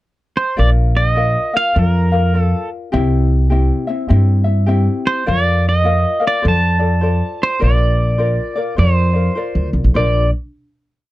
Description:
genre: Hawaiian.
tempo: 103 BPM.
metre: 4/4.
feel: swing 63% on 8ths.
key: Bb major.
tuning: A4 = 440 Hz.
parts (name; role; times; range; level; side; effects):
pedal steel guitar; melody; 0.4-10.3 s; Bb4 to A5; -18 LUFS; right 2 dB; none.
ukulele; accompaniment; 0.6-10.3 s; C4 to F5; -22 LUFS; left 4 dB; none.
upright bass; bass; 0.6-10.3 s; Bb1 to G2; -14 LUFS; equal; none.
room: little or no reverb.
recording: dry, close 1970s-style studio recording.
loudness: -13 LUFS.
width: side -16 dB against mid.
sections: 0.0-0.6 pickup bar; 0.6-9.9 A section; 9.9-11.1 final chord.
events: none.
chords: 0.0 N.C.; 0.6 Bb; 2.9 C; 5.3 Bb/F; 6.4 F6; 7.6 Bbadd9.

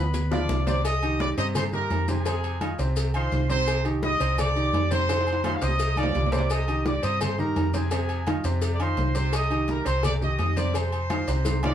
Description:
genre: latin, salsa.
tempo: 170 BPM.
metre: 4/4.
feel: straight.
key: C minor.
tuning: A4 = 440 Hz.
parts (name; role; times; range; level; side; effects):
clear trumpet section; melody; 0.0-11.7 s; Ab4 to Eb6; -28 LUFS; equal; none.
bright baritone saxophone; second line; 0.0-0.6 s; F3; -35 LUFS; left 2 dB; none.
bright upright piano; accompaniment; 0.0-11.7 s; C3 to B5; -30 LUFS; right 2 dB; none.
hollow-body short-scale fingered electric bass; bass; 0.0-11.7 s; C2 to G2; -26 LUFS; equal; none.
bongos and cowbell; percussion; 0.1-11.6 s; none; -35 LUFS; left 5 dB; none.
congas; percussion; 0.1-11.7 s; none; -33 LUFS; equal; none.
maracas; percussion; 0.1-11.7 s; none; -41 LUFS; left 5 dB; none.
timbales and agogo bells; percussion; 0.1-11.7 s; none; -35 LUFS; right 1 dB; none.
room: moderate studio ambience, RT60 0.5 s.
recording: band playing live in one room.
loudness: -22 LUFS.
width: side -10 dB against mid.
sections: 0.8-11.7 A section.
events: drum fill 0.0-0.8, 5.1-6.5, 11.3-11.7.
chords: 0.0 G7 (rootless); 0.8 Cm7; 2.3 Fm7; 3.7 Cmadd9; 5.1 F5; 6.5 Cm9; 7.9 Fm7; 9.3 Cm9; 10.7 F5.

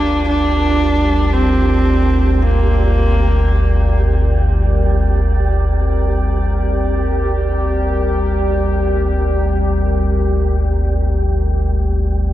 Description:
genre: dark ambient drone.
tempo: free time.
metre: none.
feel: none.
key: unclear.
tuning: A4 = 440 Hz.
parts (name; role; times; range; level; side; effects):
clear horsehead fiddle; melody; 0.0-4.0 s; Bb3 to D4; -19 LUFS; right 2 dB; tape echo.
deep dark ambient pad; sustained chords; 0.0-12.3 s; G3 to D5; -22 LUFS; left 2 dB; chorus, built-in reverb.
deep rumbling drone; drone; 0.0-12.3 s; G1 to D2; -15 LUFS; equal; built-in reverb, wide subtle chorus.
wind-like tuned noise texture; texture; 0.0-12.3 s; G4; -27 LUFS; right 5 dB; built-in reverb.
room: moderate huge ambient reverb, RT60 7.8 s.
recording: nothing above 10.4 kHz.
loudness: -13 LUFS.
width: side -14 dB against mid.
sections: 0.0-12.3 A section.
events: fade-in on ambient pad 0.0-12.3; fade-in on synth texture 0.0-12.3; filter sweep on synth drone 0.0-12.3.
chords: 0.0 Gm.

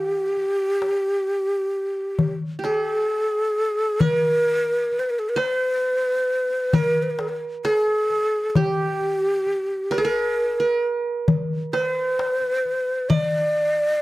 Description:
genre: Arabic maqam ensemble.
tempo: 132 BPM (eighths).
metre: 10/8.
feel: straight.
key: G maqam huzam.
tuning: A4 = 439 Hz.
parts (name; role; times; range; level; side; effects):
breathy mellow ney; melody; 0.0-14.0 s; G4 to Eb5+41c; -21 LUFS; equal; none.
qanun; second line; 0.0-14.0 s; F#4-50c to D5+40c; -27 LUFS; right 4 dB; none.
darbuka; percussion; 0.4-13.7 s; none; -23 LUFS; left 2 dB; none.
room: light reverb.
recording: dry, close 1970s-style studio recording.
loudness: -20 LUFS.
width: side -18 dB against mid.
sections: 0.0-4.0 A section; 4.0-14.0 B section.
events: none.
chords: none.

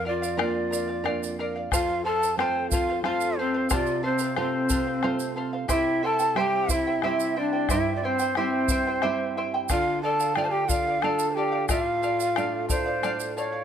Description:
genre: andean folk, Andean ensemble.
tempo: 90 BPM.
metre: 3/4.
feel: straight.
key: D minor.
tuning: A4 = 439 Hz.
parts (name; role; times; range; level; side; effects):
breathy mellow large quena; melody; 0.0-13.6 s; C5 to A5; -27 LUFS; right 3 dB; none.
breathy bright large pan pipes; second line; 0.0-13.0 s; C4 to D5; -29 LUFS; left 5 dB; none.
charango; accompaniment; 0.0-13.6 s; E4 to G5; -30 LUFS; right 1 dB; none.
nylon-string guitar; accompaniment; 0.0-13.6 s; F2 to F4; -32 LUFS; right 6 dB; none.
tube shaker; percussion; 0.2-13.5 s; none; -35 LUFS; right 10 dB; none.
bombo; percussion; 0.4-13.3 s; none; -30 LUFS; left 3 dB; none.
room: light reverb.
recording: close, detailed microphones.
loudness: -23 LUFS.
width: side -8 dB against mid.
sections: 0.0-13.6 A section.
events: none.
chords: 0.0 Bb; 1.7 F; 5.7 C; 9.7 Dm.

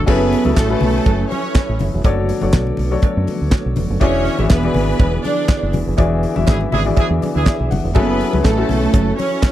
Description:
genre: disco.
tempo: 122 BPM.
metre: 4/4.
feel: straight.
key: F# minor.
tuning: A4 = 440 Hz.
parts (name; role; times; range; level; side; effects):
warm grand piano; accompaniment; 0.0-9.5 s; E3 to F#5; -21 LUFS; left 6 dB; none.
mellow tonewheel organ; sustained chords; 0.0-9.5 s; D3 to A4; -26 LUFS; right 4 dB; chorus vibrato, slow rotary speaker.
fingered electric bass; bass; 0.0-9.1 s; E1 to F#2; -19 LUFS; equal; none.
clear studio string section; second line; 0.1-9.5 s; A3 to D5; -20 LUFS; right 4 dB; none.
damped 70s drum kit; drums; 0.1-9.5 s; crash cymbal, handclaps, hi-hat, kick drum, snare drum; -14 LUFS; equal; none.
congas; percussion; 0.1-9.5 s; none; -26 LUFS; left 3 dB; none.
cowbell; percussion; 0.1-9.5 s; none; -30 LUFS; right 26 dB; none.
clear horn section; stabs; 6.5-7.7 s; D4 to G#4; -22 LUFS; right 3 dB; none.
room: little or no reverb.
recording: dry, close 1970s-style studio recording.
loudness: -14 LUFS.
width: side -13 dB against mid.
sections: 0.1-9.5 A section.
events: band accent 6.0-8.0; grand piano fill 7.0-8.0.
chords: 0.1 F#m7; 2.0 Bm7/F#; 4.0 E7; 8.0 F#m7.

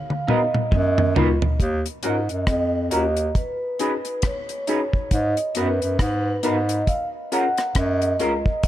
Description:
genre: lovers rock reggae.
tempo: 68 BPM.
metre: 4/4.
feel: swing 59% on 16ths.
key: Eb minor.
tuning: A4 = 440 Hz.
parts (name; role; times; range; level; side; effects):
vibraphone with soft mallets; melody; 0.0-8.7 s; B4 to Gb5; -26 LUFS; right 1 dB; tape echo.
electric guitar through a small old amp; stabs; 0.1-8.3 s; Db4 to Cb5; -29 LUFS; right 2 dB; analog chorus.
deep reggae drum kit; drums; 0.1-8.7 s; hi-hat, kick drum, rim click, toms; -23 LUFS; equal; none.
mellow tine electric piano; accompaniment; 0.3-8.4 s; Cb4 to Bb4; -29 LUFS; left 5 dB; fast stereo tremolo.
semi-hollow electric guitar; riff; 0.7-1.3 s; Db3 to Gb3; -30 LUFS; left 6 dB; analog chorus.
mellow bass clarinet; bass; 0.7-8.7 s; Db2 to Ab2; -23 LUFS; equal; none.
room: light reverb, small room ambience.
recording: none.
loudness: -19 LUFS.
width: side -13 dB against mid.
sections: 0.0-1.6 A section; 1.6-8.7 B section.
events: drum fill 0.0-1.6.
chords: 0.0 Abm7 (rootless); 1.6 Ebm7; 3.4 B6; 5.1 Abm7; 6.9 Gbmaj7.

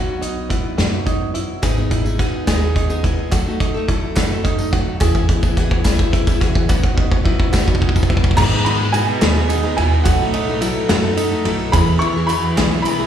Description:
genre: indie folk with a building arrangement.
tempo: 71 BPM (dotted quarters).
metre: 6/8.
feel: straight.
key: B major.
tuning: A4 = 442 Hz.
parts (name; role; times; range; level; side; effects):
fingerpicked steel-string acoustic guitar; accompaniment; 0.0-1.6 s; B2 to F#4; -26 LUFS; left 4 dB; slapback echo.
open-back banjo; arpeggios; 0.0-13.1 s; D#4 to G#4; -26 LUFS; right 10 dB; slapback echo.
upright bass; bass; 0.0-13.0 s; G#1 to G#2; -21 LUFS; right 1 dB; none.
loose indie drum kit; drums; 0.2-13.0 s; crash cymbal, hi-hat, kick drum, ride cymbal, snare drum; -18 LUFS; equal; none.
picked plugged-in steel-string acoustic guitar; accompaniment; 1.6-13.1 s; G#2 to A4; -23 LUFS; left 6 dB; slapback echo.
group handclap; percussion; 1.6-13.1 s; none; -33 LUFS; right 1 dB; none.
tambourine; percussion; 1.6-13.0 s; none; -36 LUFS; right 3 dB; none.
clear upright piano; melody; 8.4-13.1 s; F#5 to C#6; -22 LUFS; right 1 dB; slapback echo, tape echo.
warm cello; second line; 8.4-13.1 s; A2 to E3; -24 LUFS; right 3 dB; slapback echo.
hand-pumped harmonium; sustained chords; 8.4-13.1 s; E3 to B4; -27 LUFS; right 2 dB; none.
room: little or no reverb.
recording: live gig heard through the venue's PA, recital hall reverb, studio ambience.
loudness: -15 LUFS.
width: side -9 dB against mid.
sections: 0.0-8.4 A section; 8.4-13.1 B section.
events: build-up 0.0-8.4; drum fill 0.0-8.4.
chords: 0.0 B; 1.6 G#m; 3.3 B7; 5.0 E; 6.7 B; 8.4 G#m; 10.1 B7; 11.7 E.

